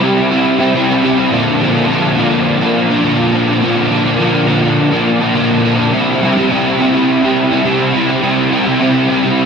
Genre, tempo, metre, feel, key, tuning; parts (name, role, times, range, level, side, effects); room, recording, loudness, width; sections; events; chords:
rock; 104 BPM; 4/4; straight; C mixolydian; A4 = 440 Hz
crunchy overdriven guitar; solo; 0.0-9.5 s; Bb2 to E4; -11 LUFS; equal; ensemble chorus
wet huge ambient reverb, RT60 7.2 s; dreamy mix soaked in reverb; -11 LUFS; side -6 dB against mid
0.0-9.5 A section
0.0 C; 1.3 Bb; 5.9 C